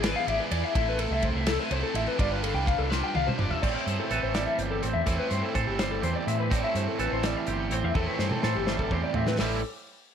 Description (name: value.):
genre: math rock and midwest emo.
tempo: 83 BPM (dotted quarters).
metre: 6/8.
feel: straight.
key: A minor.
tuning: A4 = 442 Hz.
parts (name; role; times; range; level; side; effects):
electric guitar through a small old amp; arpeggios; 0.0-9.6 s; E4 to G5; -30 LUFS; left 4 dB; wide subtle chorus.
cranked stack guitar; riff; 0.0-9.6 s; A2 to D5; -31 LUFS; right 2 dB; overdrive.
hollow-body short-scale fingered electric bass; bass; 0.0-9.6 s; F1 to A2; -31 LUFS; equal; none.
loose indie drum kit; drums; 0.0-9.5 s; crash cymbal, hi-hat, kick drum, ride cymbal, snare drum, toms; -31 LUFS; equal; none.
twangy electric guitar; accompaniment; 3.6-9.6 s; E2 to A4; -33 LUFS; right 10 dB; spring reverb.
room: little or no reverb.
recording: none.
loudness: -25 LUFS.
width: side -8 dB against mid.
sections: 0.0-3.6 A section; 3.6-9.4 B section.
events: drum fill 2.9-3.6, 8.0-9.4.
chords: 0.0 E7b9; 0.7 Amadd9; 2.2 G9sus4; 3.6 Am7.